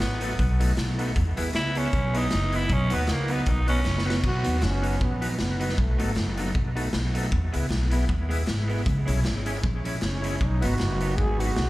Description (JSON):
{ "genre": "ska", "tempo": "156 BPM", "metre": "4/4", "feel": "swing 56% on 8ths", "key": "B major", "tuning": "A4 = 440 Hz", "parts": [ { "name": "breathy tenor saxophone", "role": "melody", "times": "0.0-4.2 s", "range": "A#3 to E4", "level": "-30 LUFS", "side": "right 1 dB", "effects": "tape echo" }, { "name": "electric guitar through a small old amp", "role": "accompaniment", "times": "0.0-11.5 s", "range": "F#3 to E4", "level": "-35 LUFS", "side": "right 2 dB", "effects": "tape echo, slapback echo" }, { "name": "upright bass", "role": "bass", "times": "0.0-11.7 s", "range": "F#1 to E2", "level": "-26 LUFS", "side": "equal", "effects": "none" }, { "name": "raw garage drum kit", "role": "drums", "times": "0.0-11.7 s", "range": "crash cymbal, hi-hat, kick drum, snare drum", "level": "-28 LUFS", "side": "equal", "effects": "tape echo" }, { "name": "group handclap", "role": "percussion", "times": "0.0-11.7 s", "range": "none", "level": "-44 LUFS", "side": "left 1 dB", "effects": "none" }, { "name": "tonewheel organ", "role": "stabs", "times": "0.2-11.5 s", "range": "B3 to C#5", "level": "-34 LUFS", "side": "left 1 dB", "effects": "overdrive, chorus vibrato, slow rotary speaker, tape echo, slapback echo" }, { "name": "growling trombone", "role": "melody", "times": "4.3-6.3, 10.1-11.7 s", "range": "A3 to G#4", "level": "-32 LUFS", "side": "right 1 dB", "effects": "tape echo, slapback echo" } ], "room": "light reverb", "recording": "live gig heard through the venue's PA, club ambience", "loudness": "-22 LUFS", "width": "side -18 dB against mid", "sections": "0.0-4.2 A section; 4.2-11.7 B section", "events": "tenor saxophone solo 0.0-4.2; drum fill 3.9-4.2", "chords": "0.0 B7; 1.2 E; 2.7 B; 5.8 B7; 7.3 E; 8.9 C#m; 10.4 B" }